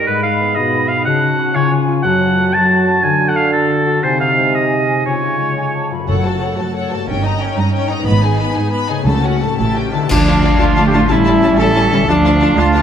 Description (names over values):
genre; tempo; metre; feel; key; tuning
cinematic, heroic adventure film score; 121 BPM (dotted quarters); 6/8; straight; F# harmonic minor; A4 = 441 Hz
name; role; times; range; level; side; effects
clear oboe; second line; 0.0-5.9, 10.1-12.8 s; A4 to A5; -17 LUFS; right 1 dB; none
mellow clarinet; second line; 0.0-5.9, 10.1-12.8 s; C#4 to G#4; -25 LUFS; equal; none
mellow trombone section; sustained chords; 0.0-5.9, 10.1-12.8 s; B2 to D4; -20 LUFS; right 4 dB; none
concert harp; arpeggios; 0.0-12.8 s; F#2 to A4; -22 LUFS; left 9 dB; none
mellow hollow small flute group; second line; 0.1-6.1, 10.1-12.8 s; G#5 to B5; -24 LUFS; right 1 dB; none
warm symphonic violin section; melody; 6.1-12.8 s; F#5 to B5; -23 LUFS; left 5 dB; none
warm symphonic violin section; second line; 6.1-12.8 s; E4 to D#5; -25 LUFS; left 4 dB; none
warm symphonic viola section; accompaniment; 6.1-12.8 s; A3 to A4; -25 LUFS; right 2 dB; none
mellow French horn section; sustained chords; 6.1-12.8 s; A3 to A4; -21 LUFS; left 3 dB; none
warm studio double bass section; bass; 6.1-12.8 s; F#1 to D2; -18 LUFS; right 3 dB; none
warm symphonic cello section; bass; 6.1-12.8 s; F#2 to A3; -20 LUFS; right 2 dB; none
timpani; percussion; 6.1-6.6, 9.1-9.5 s; F#2 to C#3; -22 LUFS; left 1 dB; none
cymbal swell, clash cymbals and concert bass drum; percussion; 8.1-10.7 s; none; -21 LUFS; equal; none
clear trumpet; stabs; 10.1-12.8 s; D4 to A4; -18 LUFS; right 1 dB; none
room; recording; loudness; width
wet concert hall reverb, RT60 1.8 s; none; -12 LUFS; side -8 dB against mid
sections
0.0-6.1 A section; 6.1-10.1 B section; 10.1-12.8 C section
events
band accent 10.1-10.4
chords
0.1 G#m; 1.1 F#m/C#; 1.6 C#; 2.0 F#m; 3.0 D; 4.0 G#/B#; 5.1 C#; 6.1 F#m; 7.1 D#7/G; 8.1 G#m; 9.1 F#m/C#; 9.6 A7; 10.1 Dm; 11.1 A; 12.1 Dm